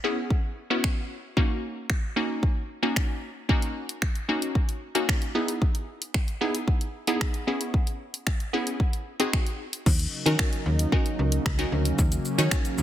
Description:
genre	dance-pop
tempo	113 BPM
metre	4/4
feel	straight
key	unclear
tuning	A4 = 438 Hz
part	wavetable chord stab	accompaniment	0.0-12.8 s	A#3 to C#5	-28 LUFS	equal	sidechain pumping
part	house drum kit	drums	0.3-12.8 s	crash cymbal, finger snaps, hi-hat, kick drum, shaker	-25 LUFS	equal	soft clipping on snare
part	lush unison pad	sustained chords	10.1-12.8 s	C#3 to D#4	-30 LUFS	right 1 dB	chorus, sidechain pumping
part	slap-like FM bass	bass	9.9-12.8 s	C#2 to D#3	-24 LUFS	equal	sidechain pumping
room	light reverb, digital ambience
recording	dense, heavily limited modern master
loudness	-24 LUFS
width	side -12 dB against mid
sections	0.0-9.9 A section; 9.9-12.8 B section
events	none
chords	0.0 C#m7; 1.4 D#m7; 5.3 Emaj7; 7.5 C#m7; 8.8 G#7; 9.9 D#m7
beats	0.31 0.84 | 1.37 1.90 2.43 2.96 | 3.49 4.02 4.55 5.08 | 5.62 6.15 6.68 7.21 | 7.74 8.27 8.80 9.33 | 9.86 10.39 10.93 11.46 | 11.99 12.52

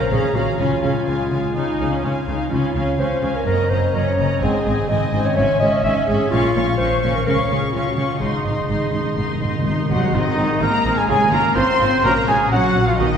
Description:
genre	cinematic, heroic adventure film score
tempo	126 BPM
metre	4/4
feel	straight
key	unclear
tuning	A4 = 438 Hz
part	warm symphonic violin section	melody	0.0-13.2 s	Eb5 to Db6	-27 LUFS	left 3 dB	none
part	mellow clarinet	second line	0.0-9.6 s	F4 to Fb5	-22 LUFS	equal	none
part	warm symphonic violin section	second line	0.0-13.2 s	Eb5 to C6	-28 LUFS	left 1 dB	none
part	rich symphonic viola section	accompaniment	0.0-13.1 s	Ab3 to Gb4	-26 LUFS	right 3 dB	none
part	concert harp	arpeggios	0.0-13.2 s	Gb2 to F5	-25 LUFS	left 4 dB	none
part	clear symphonic cello section	bass	0.1-13.2 s	Gb2 to C4	-25 LUFS	right 1 dB	none
part	rich symphonic double bass section	bass	0.1-13.1 s	Gb1 to Db2	-25 LUFS	right 1 dB	none
part	timpani	percussion	8.2-11.8 s	Ab2	-26 LUFS	equal	none
part	warm trumpet section	stabs	9.9-13.2 s	Eb4 to C5	-19 LUFS	right 1 dB	none
room	wet scoring stage reverb, RT60 1.8 s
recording	heard from further back in the room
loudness	-16 LUFS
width	side -7 dB against mid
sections	0.0-10.1 A section; 10.1-13.2 A section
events	timpani fill 8.2-10.1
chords	0.0 Bbm; 0.6 Db; 3.5 Gb6; 4.4 Ab; 5.4 Dbm/Ab; 6.3 Bbm; 7.3 Db; 8.2 Ab; 11.1 Db/Ab; 12.0 Gb/Bb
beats	0.12 | 0.59 1.07 1.56 2.04 | 2.52 3.00 3.47 3.95 | 4.42 4.90 5.37 5.84 | 6.32 6.79 7.26 7.74 | 8.22 8.70 9.18 9.66 | 10.14 10.62 11.09 11.56 | 12.04 12.51 12.98

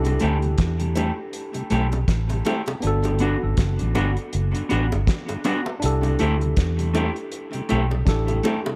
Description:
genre	lovers rock reggae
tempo	80 BPM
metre	4/4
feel	swing 58% on 16ths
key	unclear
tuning	A4 = 440 Hz
part	tine electric piano	accompaniment	0.0-8.8 s	B3 to A4	-32 LUFS	equal	overdrive, tape echo
part	vintage muted fingered electric bass	bass	0.0-8.4 s	F#1 to E2	-25 LUFS	equal	none
part	cloth-damped thuddy drum kit	drums	0.0-8.6 s	hi-hat, kick drum, snare drum	-27 LUFS	equal	gated reverb
part	mellow tonewheel organ	accompaniment	0.1-8.7 s	G2 to F#4	-35 LUFS	equal	none
part	bongos	percussion	0.1-8.8 s	none	-34 LUFS	equal	tape echo
part	mellow electric guitar	stabs	0.2-8.6 s	A3 to G4	-29 LUFS	equal	tape echo
room	studio reverb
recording	none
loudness	-22 LUFS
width	mono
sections	0.0-8.8 A section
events	none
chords	0.0 C6; 2.8 Gmaj7; 5.8 C6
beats	0.59 1.34 2.08 | 2.83 3.58 4.33 5.08 | 5.83 6.57 7.32 8.07

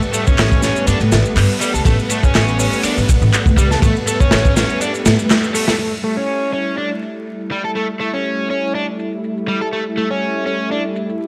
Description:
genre	breakbeat, breaks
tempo	122 BPM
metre	4/4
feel	swing 54% on 16ths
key	A mixolydian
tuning	A4 = 439 Hz
part	lush unison pad	sustained chords	0.0-11.3 s	G3 to E4	-25 LUFS	equal	chorus, sidechain pumping
part	electronic shaker and handclaps	drums	0.0-11.3 s	none	-25 LUFS	equal	low-pass filter on perc, low-pass filter on snare
part	overdriven electric guitar	riff	0.1-10.8 s	G3 to A4	-23 LUFS	equal	low-pass filter, delay
part	crunchy breakbeat drum kit	drums	0.1-5.8 s	hi-hat, kick drum, ride cymbal, snare drum	-19 LUFS	equal	none
part	upright bass	bass	0.3-5.1 s	A1 to A2	-19 LUFS	equal	none
room	light reverb, small room ambience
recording	vinyl crackle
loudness	-17 LUFS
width	mono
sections	0.0-5.8 A section; 5.8-11.3 B section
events	kick drops out 4.8-5.8; band accent 5.3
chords	0.0 A7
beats	0.39 0.88 1.37 | 1.86 2.35 2.84 3.34 | 3.83 4.32 4.81 5.30 | 5.79 6.29 6.78 7.27 | 7.76 8.25 8.74 9.24 | 9.73 10.22 10.71 11.20

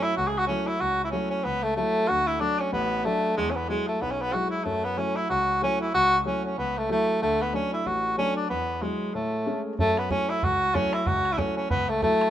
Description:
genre	celtic folk, Celtic reel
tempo	187 BPM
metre	4/4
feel	swing 57% on 8ths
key	unclear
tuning	A4 = 442 Hz
part	warm tenor saxophone	melody	0.0-12.3 s	G#3 to G#4	-24 LUFS	equal	none
part	warm grand piano	accompaniment	0.0-12.3 s	A1 to E4	-30 LUFS	left 2 dB	none
part	bodhran	percussion	9.8-12.3 s	none	-30 LUFS	right 2 dB	none
room	light reverb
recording	minimal, uncompressed stereo recording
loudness	-23 LUFS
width	side -11 dB against mid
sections	0.0-9.8 A section; 9.8-12.3 A section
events	none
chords	0.0 F#m7; 2.1 D; 3.4 Eadd9; 4.7 F#m7; 7.2 D; 8.5 Eadd9; 9.1 Amaj7; 9.8 F#m7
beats	0.17 0.49 | 0.81 1.13 1.45 1.77 | 2.09 2.41 2.73 3.05 | 3.37 3.69 4.01 4.33 | 4.66 4.98 5.30 5.62 | 5.94 6.26 6.58 6.90 | 7.22 7.54 7.86 8.18 | 8.50 8.82 9.14 9.46 | 9.78 10.10 10.42 10.74 | 11.06 11.38 11.71 12.03

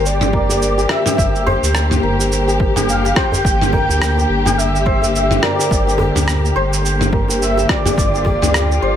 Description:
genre	organic downtempo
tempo	106 BPM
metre	4/4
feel	swing 58% on 16ths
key	G dorian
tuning	A4 = 442 Hz
part	breathy flute-like synth lead	melody	0.0-9.0 s	D5 to G5	-21 LUFS	equal	ensemble chorus, ping-pong delay, shimmer reverb
part	dark studio string section	sustained chords	0.0-9.0 s	D3 to G4	-22 LUFS	left 2 dB	sidechain pumping, shimmer reverb
part	santur	arpeggios	0.0-9.0 s	G4 to G5	-20 LUFS	left 1 dB	ping-pong delay, shimmer reverb
part	warm sub bass	bass	0.0-9.0 s	G1 to D2	-19 LUFS	equal	sidechain pumping
part	dusty soul sampler-style drum kit	drums	0.1-8.8 s	cabasa, rim click, toms	-20 LUFS	right 1 dB	none
part	electronic kick drum	drums	0.3-8.4 s	none	-20 LUFS	equal	overdrive
part	djembe	percussion	0.5-8.8 s	none	-24 LUFS	right 1 dB	none
room	light reverb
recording	none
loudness	-13 LUFS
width	side -9 dB against mid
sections	0.0-9.0 A section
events	none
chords	0.0 Gm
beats	0.05 0.61 | 1.18 1.75 2.31 2.88 | 3.44 4.01 4.58 5.14 | 5.71 6.28 6.84 7.41 | 7.97 8.54

